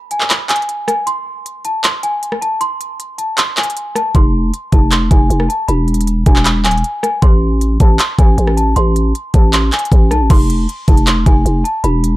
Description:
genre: hip hop, trap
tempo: 156 BPM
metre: 4/4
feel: half-time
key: unclear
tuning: A4 = 440 Hz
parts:
  - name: small celesta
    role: melody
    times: 0.0-12.2 s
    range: G#5 to C6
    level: -19 LUFS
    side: equal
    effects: low-pass filter
  - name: trap drum kit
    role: drums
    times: 0.1-12.1 s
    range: crash cymbal, handclaps, hi-hat, kick drum, rim click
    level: -12 LUFS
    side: equal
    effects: overdrive
  - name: growling 808-style bass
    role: bass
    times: 4.1-12.2 s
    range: D1 to B1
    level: -14 LUFS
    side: equal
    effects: none
room: little or no reverb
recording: dark, warm production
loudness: -11 LUFS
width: side -18 dB against mid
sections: 0.0-10.3 A section; 10.3-12.2 B section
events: break 0.0-4.1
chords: 0.0 N.C.; 4.1 F5; 5.7 E; 7.2 Am; 10.3 F5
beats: 0.30 0.69 | 1.07 1.46 1.84 2.22 | 2.61 2.99 3.38 3.76 | 4.15 4.53 4.92 5.30 | 5.69 6.07 6.46 6.84 | 7.22 7.61 7.99 8.38 | 8.76 9.15 9.53 9.92 | 10.30 10.69 11.07 11.46 | 11.84

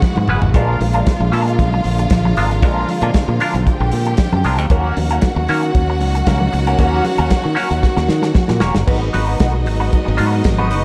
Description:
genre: disco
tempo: 115 BPM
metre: 4/4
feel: straight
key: unclear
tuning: A4 = 440 Hz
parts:
  - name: rich studio violin section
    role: second line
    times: 0.0-10.8 s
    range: D#4 to G5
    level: -27 LUFS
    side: equal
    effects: none
  - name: clean electric guitar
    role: accompaniment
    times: 0.0-10.8 s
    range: G#3 to B4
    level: -25 LUFS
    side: equal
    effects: wah
  - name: rich studio string section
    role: sustained chords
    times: 0.0-10.8 s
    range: C#3 to F#4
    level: -26 LUFS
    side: equal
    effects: none
  - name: warm soul drum kit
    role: drums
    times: 0.0-10.8 s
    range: crash cymbal, hi-hat, kick drum, snare drum, toms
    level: -20 LUFS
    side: equal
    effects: none
  - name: congas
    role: percussion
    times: 0.0-10.7 s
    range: none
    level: -28 LUFS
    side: equal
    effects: none
  - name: modern bright fingered electric bass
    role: bass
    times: 0.2-10.8 s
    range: E1 to D#3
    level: -20 LUFS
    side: equal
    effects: none
room: moderate large studio reverb, RT60 1.3 s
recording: dark, warm production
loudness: -16 LUFS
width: mono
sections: 0.0-8.9 A section; 8.9-10.8 B section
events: drum fill 0.0-0.5, 7.8-8.9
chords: 0.0 C#m7; 0.5 A#7; 4.7 D#m7; 8.9 G#m7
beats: 0.02 | 0.54 1.06 1.58 2.10 | 2.62 3.14 3.66 4.18 | 4.70 5.22 5.74 6.26 | 6.79 7.31 7.83 8.35 | 8.88 9.40 9.92 10.45

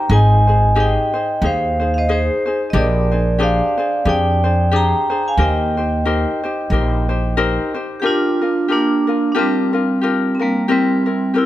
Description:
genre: Hawaiian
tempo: 91 BPM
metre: 4/4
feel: swing 58% on 8ths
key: Eb major, Bb major from 8.0 s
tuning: A4 = 440 Hz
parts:
  - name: vibraphone with hard mallets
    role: melody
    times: 0.0-11.5 s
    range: G3 to Bb5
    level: -18 LUFS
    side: right 1 dB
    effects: none
  - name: ukulele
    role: accompaniment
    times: 0.0-11.5 s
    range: C4 to C5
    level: -21 LUFS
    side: left 4 dB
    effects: none
  - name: upright bass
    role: bass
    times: 0.1-7.6 s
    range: Ab1 to F2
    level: -17 LUFS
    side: equal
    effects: none
room: light reverb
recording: close, detailed microphones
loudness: -14 LUFS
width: side -14 dB against mid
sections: 0.0-8.0 A section; 8.0-11.5 B section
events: none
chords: 0.1 Abmaj7; 2.7 Bb13; 5.4 Eb6; 8.0 Bb6; 10.7 C7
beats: | 0.10 0.76 1.42 2.08 | 2.74 3.40 4.07 4.73 | 5.39 6.05 6.71 7.37 | 8.04 8.70 9.36 10.02 | 10.69 11.35

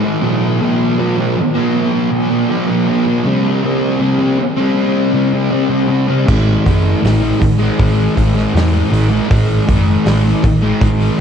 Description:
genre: rock, shoegaze and dream pop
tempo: 79 BPM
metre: 4/4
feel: straight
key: A major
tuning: A4 = 440 Hz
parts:
  - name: thick fuzz guitar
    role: riff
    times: 0.0-11.2 s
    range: A2 to C#4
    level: -13 LUFS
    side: equal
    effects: distortion, lush chorus
  - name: hollow-body short-scale picked electric bass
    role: bass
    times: 6.3-11.1 s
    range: F#1 to E2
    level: -15 LUFS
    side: equal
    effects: none
  - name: loose indie drum kit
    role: drums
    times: 6.3-11.0 s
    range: crash cymbal, hi-hat, kick drum, snare drum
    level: -18 LUFS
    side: equal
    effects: none
room: wet huge ambient reverb, RT60 8.6 s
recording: dreamy mix soaked in reverb, cassette tape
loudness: -12 LUFS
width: side -7 dB against mid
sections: 0.0-11.2 A section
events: none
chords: 0.2 B5; 3.3 C#5; 6.3 A5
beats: | 0.23 0.99 1.74 2.50 | 3.26 4.01 4.77 5.53 | 6.28 7.04 7.79 8.55 | 9.30 10.06 10.81

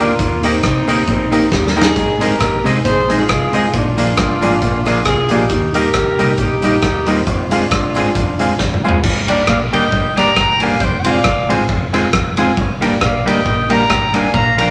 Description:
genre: ska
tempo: 136 BPM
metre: 4/4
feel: swing 56% on 8ths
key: unclear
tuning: A4 = 440 Hz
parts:
  - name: warm horn section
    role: melody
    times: 0.0-14.7 s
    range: Bb3 to Bb5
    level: -20 LUFS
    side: equal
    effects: none
  - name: clean electric guitar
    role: accompaniment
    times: 0.0-14.7 s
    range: F3 to Bb4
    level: -21 LUFS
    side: equal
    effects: tape echo
  - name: bright upright piano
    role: stabs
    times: 0.0-14.7 s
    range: Bb3 to F5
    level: -23 LUFS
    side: equal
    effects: none
  - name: deep dub fingered electric bass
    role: bass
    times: 0.0-14.7 s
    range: F1 to Eb2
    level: -26 LUFS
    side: equal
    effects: none
  - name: cabasa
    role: percussion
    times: 0.0-8.9 s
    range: none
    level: -42 LUFS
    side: equal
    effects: none
  - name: clean electric guitar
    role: riff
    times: 0.2-14.5 s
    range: F2 to Eb3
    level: -28 LUFS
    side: equal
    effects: none
  - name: raw garage drum kit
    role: drums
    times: 0.2-14.7 s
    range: crash cymbal, hi-hat, kick drum, ride cymbal, rim click, snare drum, toms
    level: -21 LUFS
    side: equal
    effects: none
room: wet club reverb, RT60 0.7 s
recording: lossy compression artefacts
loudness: -15 LUFS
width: mono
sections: 0.0-9.0 A section; 9.0-14.7 B section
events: drum fill 1.5-2.0, 8.6-9.0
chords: 0.2 Eb; 2.0 Ab; 3.7 Bb7; 5.5 Eb; 7.3 Fm; 9.0 Gm; 10.8 Fm; 12.6 Gm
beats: | 0.19 0.64 1.08 1.52 | 1.96 2.40 2.85 3.29 | 3.73 4.17 4.62 5.06 | 5.50 5.94 6.38 6.83 | 7.27 7.71 8.15 8.60 | 9.04 9.48 9.92 10.36 | 10.80 11.25 11.69 12.13 | 12.57 13.01 13.46 13.90 | 14.34

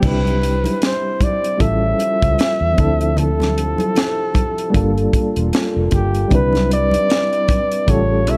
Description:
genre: lush 1970s-style soul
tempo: 76 BPM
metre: 4/4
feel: swing 58% on 16ths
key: C major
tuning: A4 = 440 Hz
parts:
  - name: breathy flugelhorn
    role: melody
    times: 0.0-8.4 s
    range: G4 to E5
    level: -22 LUFS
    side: equal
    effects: tape echo
  - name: reed electric piano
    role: accompaniment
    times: 0.0-8.4 s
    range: F3 to B4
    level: -24 LUFS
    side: equal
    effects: fast tremolo
  - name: mellow French horn section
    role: sustained chords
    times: 0.0-8.4 s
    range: Bb2 to B4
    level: -30 LUFS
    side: equal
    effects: none
  - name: vintage muted fingered electric bass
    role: bass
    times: 0.0-8.4 s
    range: E1 to E2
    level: -22 LUFS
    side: equal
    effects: none
  - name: tight funk drum kit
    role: drums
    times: 0.0-8.4 s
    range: crash cymbal, hi-hat, kick drum, snare drum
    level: -22 LUFS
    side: equal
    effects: none
  - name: congas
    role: percussion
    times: 0.0-8.4 s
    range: none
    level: -28 LUFS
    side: equal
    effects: none
room: studio reverb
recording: none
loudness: -17 LUFS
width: mono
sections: 0.0-8.4 A section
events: none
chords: 0.0 Cmaj7; 1.6 A7b13; 2.8 Dm9; 4.7 Gm9; 6.3 Cmaj7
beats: | 0.03 0.81 1.60 2.39 | 3.17 3.96 4.74 5.53 | 6.31 7.10 7.88

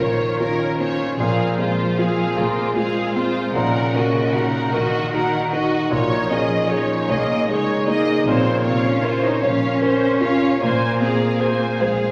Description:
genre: cinematic, emotional film score for orchestra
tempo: 51 BPM (dotted quarters)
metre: 6/8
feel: rubato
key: Bb minor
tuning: A4 = 438 Hz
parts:
  - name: warm studio violin section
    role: melody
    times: 0.0-12.1 s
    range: C5 to Ab5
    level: -31 LUFS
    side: equal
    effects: none
  - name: warm studio violin section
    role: second line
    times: 0.0-12.1 s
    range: F4 to Eb5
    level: -27 LUFS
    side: equal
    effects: none
  - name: rich studio viola section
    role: accompaniment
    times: 0.0-12.1 s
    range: Db3 to Ab4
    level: -32 LUFS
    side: equal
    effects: none
  - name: warm concert grand piano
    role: accompaniment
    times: 0.0-12.1 s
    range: Bb2 to Db5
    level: -23 LUFS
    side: equal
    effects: none
  - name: concert harp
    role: arpeggios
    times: 0.0-12.1 s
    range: Bb2 to Bb4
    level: -32 LUFS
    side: equal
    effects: none
  - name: warm studio cello section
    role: bass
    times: 0.0-12.1 s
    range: Db3 to F4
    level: -26 LUFS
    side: equal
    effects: none
  - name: warm studio double bass section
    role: bass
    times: 0.0-12.1 s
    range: Bb1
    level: -34 LUFS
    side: equal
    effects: none
room: wet scoring stage reverb, RT60 1.5 s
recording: vinyl crackle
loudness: -20 LUFS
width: mono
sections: 0.0-12.1 A section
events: none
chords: 0.0 Bbmadd9; 1.2 Fm/Bb; 3.5 Ebm/Bb; 5.9 Absus4/Bb; 8.3 Bbmadd9; 10.6 Fm/Bb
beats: | 1.18 2.36 | 3.54 4.73 | 5.92 7.09 | 8.26 9.42 | 10.61 11.80

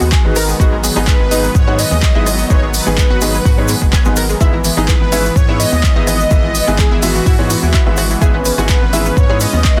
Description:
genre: progressive house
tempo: 126 BPM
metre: 4/4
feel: straight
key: unclear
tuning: A4 = 441 Hz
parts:
  - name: warm velvety synth lead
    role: melody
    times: 0.0-9.8 s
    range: F#4 to D#5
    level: -24 LUFS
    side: equal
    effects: chorus, digital delay
  - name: soft supersaw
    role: second line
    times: 0.0-9.8 s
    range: F#4 to D#5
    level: -28 LUFS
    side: equal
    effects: sidechain pumping, digital delay
  - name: warm analog pad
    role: sustained chords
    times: 0.0-9.8 s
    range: D#3 to C#4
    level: -25 LUFS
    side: equal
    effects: chorus, tremolo, sidechain pumping
  - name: analog pluck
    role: arpeggios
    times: 0.0-9.8 s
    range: E3 to A#4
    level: -24 LUFS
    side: equal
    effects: ensemble chorus, cassette tape, sidechain pumping, digital delay
  - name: round analog bass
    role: bass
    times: 0.0-9.8 s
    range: F#1 to G#2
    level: -21 LUFS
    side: equal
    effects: sidechain pumping
  - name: congas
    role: percussion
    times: 0.0-9.8 s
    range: none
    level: -29 LUFS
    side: equal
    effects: sidechain pumping on perc
  - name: tube shaker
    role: percussion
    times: 0.0-9.7 s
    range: none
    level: -27 LUFS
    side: equal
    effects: none
  - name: downlifter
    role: sound effects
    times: 0.0-0.6 s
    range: none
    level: barely audible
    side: none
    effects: none
  - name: deep house drum kit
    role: drums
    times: 0.1-9.7 s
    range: handclaps, hi-hat, rim click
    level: -23 LUFS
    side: equal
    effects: none
  - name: electronic kick drum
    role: drums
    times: 0.1-9.7 s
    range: none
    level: -15 LUFS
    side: equal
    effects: none
  - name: clear grand piano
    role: stabs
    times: 0.2-9.8 s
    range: G#2 to G#5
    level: -24 LUFS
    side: equal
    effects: sidechain pumping, digital delay
room: digital ambience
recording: dense, heavily limited modern master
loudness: -13 LUFS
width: mono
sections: 0.0-9.8 A section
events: none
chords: 0.0 G#m; 4.4 E/G#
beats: 0.12 | 0.60 1.07 1.55 2.03 | 2.50 2.98 3.46 3.93 | 4.41 4.88 5.36 5.84 | 6.31 6.79 7.26 7.74 | 8.22 8.69 9.17 9.64

